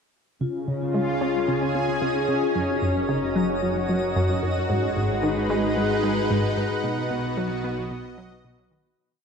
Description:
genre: ambient, sequencer-driven space music.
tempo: 112 BPM.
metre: 4/4.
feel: straight.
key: unclear.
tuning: A4 = 440 Hz.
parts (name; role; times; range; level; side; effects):
lush unison pad; sustained chords; 0.4-9.0 s; B2 to G#5; -25 LUFS; equal; chorus.
vibraphone with medium hard mallets; arpeggios; 0.4-9.0 s; E#4 to B5; -30 LUFS; left 3 dB; auto-pan, low-pass filter, tape echo.
analog pluck; riff; 0.4-8.9 s; F#2 to C#4; -27 LUFS; equal; chorus, tape echo.
fat analog bass; bass; 0.4-9.0 s; F#1 to C#2; -37 LUFS; equal; tube saturation.
twinkling granular texture; texture; 0.7-9.0 s; D#4 to D#5; -35 LUFS; equal; built-in reverb.
room: wet lush hall reverb, RT60 2.5 s.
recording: dreamy mix soaked in reverb.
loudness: -22 LUFS.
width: side -6 dB against mid.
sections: 0.4-9.0 A section.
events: fade-in on analog synth bass 0.4-9.0; filter sweep on synth arpeggio sound 0.4-9.0; fade-out 6.1-9.0.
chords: 0.4 C#; 2.6 F#; 4.7 G#m7; 6.8 B.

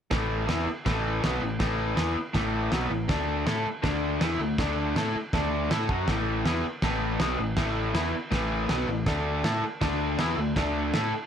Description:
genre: garage rock duo or trio.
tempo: 161 BPM.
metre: 4/4.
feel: straight.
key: unclear.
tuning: A4 = 440 Hz.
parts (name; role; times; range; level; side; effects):
raw garage guitar; riff; 0.1-11.2 s; A2 to A4; -27 LUFS; left 1 dB; overdrive.
growling picked electric bass; bass; 0.1-11.2 s; A1 to A2; -32 LUFS; equal; overdrive.
cloth-damped thuddy drum kit; drums; 0.1-11.0 s; crash cymbal, kick drum, snare drum; -30 LUFS; right 1 dB; none.
room: light reverb, small room reverb.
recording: none.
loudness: -25 LUFS.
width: side -8 dB against mid.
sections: 0.1-11.3 A section.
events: none.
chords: 0.1 A5; 3.1 D5; 6.1 A5; 9.1 D5.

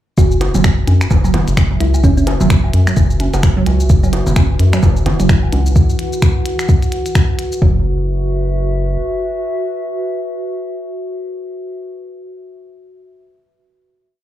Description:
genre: minimal techno.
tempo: 129 BPM.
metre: 4/4.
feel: swing 59% on 16ths.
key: unclear.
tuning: A4 = 439 Hz.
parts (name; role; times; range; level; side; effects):
thumb-piano-like synth pluck; melody; 0.2-2.2 s; C#4 to F#4; -21 LUFS; equal; chorus, digital delay.
rubbery square bass; bass; 0.2-9.0 s; F#1 to F#2; -15 LUFS; equal; sidechain pumping.
electronic kick drum; drums; 0.2-7.7 s; none; -12 LUFS; equal; none.
minimal click drum kit; drums; 0.2-7.6 s; finger snaps, hi-hat, shaker; -24 LUFS; left 1 dB; none.
woodblock, bongos and congas; percussion; 0.2-5.5 s; none; -22 LUFS; equal; digital delay.
warbly tape-like pad; texture; 0.2-12.0 s; F#4 to F#5; -24 LUFS; equal; chorus, built-in reverb, sidechain pumping.
hollow square pluck; riff; 0.5-7.8 s; F#3 to C#4; -21 LUFS; right 5 dB; chorus, sidechain pumping, ping-pong delay.
swarming drone; texture; 4.6-5.8 s; E3 to E4; -28 LUFS; left 2 dB; built-in reverb, sidechain pumping.
room: light reverb.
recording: played on a big sound system in a bare room, large studio reverb.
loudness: -12 LUFS.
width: side -12 dB against mid.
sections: 0.2-7.6 groove; 7.6-11.3 final chord.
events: none.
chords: 0.2 F#5; 7.6 F#7sus4.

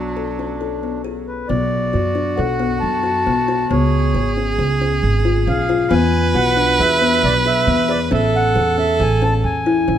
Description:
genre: contemporary instrumental, chamber music in an uneven meter.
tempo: 136 BPM.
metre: 5/4.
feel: straight.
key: B dorian.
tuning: A4 = 440 Hz.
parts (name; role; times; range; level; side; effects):
mellow accordion; melody; 0.0-10.0 s; D4 to A5; -22 LUFS; equal; none.
clear viola; second line; 0.0-10.0 s; F#3 to B4; -20 LUFS; right 3 dB; none.
kalimba; arpeggios; 0.0-10.0 s; B3 to A4; -21 LUFS; left 6 dB; none.
upright bass; bass; 0.0-10.0 s; G#1 to F#2; -20 LUFS; right 2 dB; none.
room: light reverb.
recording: close, detailed microphones.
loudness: -15 LUFS.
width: side -10 dB against mid.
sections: 0.0-1.5 A section; 1.5-10.0 B section.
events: none.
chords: 0.0 Bm7; 3.7 C#7; 5.9 E; 8.1 Amaj7.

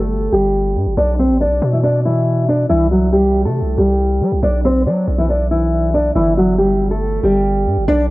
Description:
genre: hip hop.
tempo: 139 BPM.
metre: 4/4.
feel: half-time.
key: unclear.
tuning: A4 = 440 Hz.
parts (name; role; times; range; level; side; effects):
nylon-string guitar; melody; 0.0-8.1 s; E3 to D5; -15 LUFS; equal; low-pass filter.
long sustained 808-style bass; bass; 0.0-8.1 s; G1 to G3; -18 LUFS; equal; none.
room: light reverb, small room ambience.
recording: worn, warbling old tape, cassette tape, warbly pitch drift.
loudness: -13 LUFS.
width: side -19 dB against mid.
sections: 0.0-8.1 A section.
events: filter sweep on nylon-string guitar 0.0-7.9.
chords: 0.0 Emadd11/G (rootless); 1.0 Bm; 2.7 C5; 4.4 Bm; 6.2 Emadd11/G (rootless).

